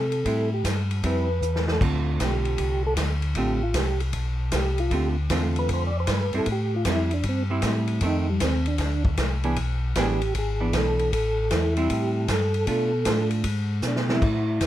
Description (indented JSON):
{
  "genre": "soul jazz organ trio",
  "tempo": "155 BPM",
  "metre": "4/4",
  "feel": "swing 66% on 8ths",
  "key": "A minor",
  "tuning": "A4 = 438 Hz",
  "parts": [
    { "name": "percussive tonewheel organ", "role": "melody", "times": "0.0-14.7 s", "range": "G3 to D5", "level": "-27 LUFS", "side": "right 1 dB", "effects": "slow rotary speaker, chorus vibrato" },
    { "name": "mellow tonewheel organ", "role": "bass", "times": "0.0-14.7 s", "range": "G#1 to C3", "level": "-25 LUFS", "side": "equal", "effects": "slow rotary speaker" },
    { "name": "swinging big-band drum kit", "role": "drums", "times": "0.1-14.7 s", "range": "crash cymbal, hi-hat, kick drum, ride cymbal, snare drum", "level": "-28 LUFS", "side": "equal", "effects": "none" },
    { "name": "hollow-body jazz guitar", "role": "accompaniment", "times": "0.3-14.2 s", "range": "D3 to G#4", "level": "-28 LUFS", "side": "right 2 dB", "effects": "none" }
  ],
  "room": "light reverb",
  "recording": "none",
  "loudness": "-22 LUFS",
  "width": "side -13 dB against mid",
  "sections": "0.0-14.2 A section",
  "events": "tonewheel organ solo 0.0-14.2; drum fill 1.4-1.8, 13.8-14.2",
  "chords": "0.0 Am7; 1.8 Dm7; 6.5 Am7; 8.0 F7; 9.6 E7; 11.1 Am7; 12.7 Bm7b5; 13.5 E"
}